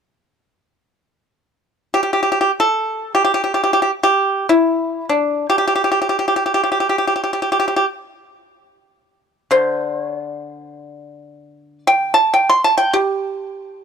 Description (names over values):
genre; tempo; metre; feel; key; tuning
chinese traditional, Chinese solo plucked strings; free time; none; none; G zhi mode; A4 = 439 Hz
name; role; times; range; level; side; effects
pipa; solo; 1.9-13.8 s; D3 to C6; -15 LUFS; equal; none
room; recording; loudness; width
small room ambience; dry, close 1970s-style studio recording; -15 LUFS; side -7 dB against mid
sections
1.1-13.8 A section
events
none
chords
none